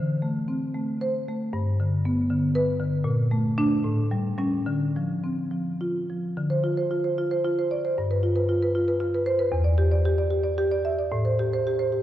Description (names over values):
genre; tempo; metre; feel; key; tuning
classical, contemporary piece for solo marimba; 69-80 BPM (dotted quarters); 6/8; rubato; D minor; A4 = 440 Hz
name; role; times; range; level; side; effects
marimba with medium mallets; solo; 0.0-12.0 s; E2 to E5; -22 LUFS; equal; none
room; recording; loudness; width
wet church reverb, RT60 3.1 s; worn, warbling old tape, cassette tape, warbly pitch drift; -22 LUFS; side -12 dB against mid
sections
0.0-6.4 A section; 6.4-12.0 A section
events
none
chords
0.0 D5; 1.5 G; 3.0 Bbmaj7; 3.8 A7; 4.7 Dm7; 8.0 G7; 9.5 Em7; 11.1 Am7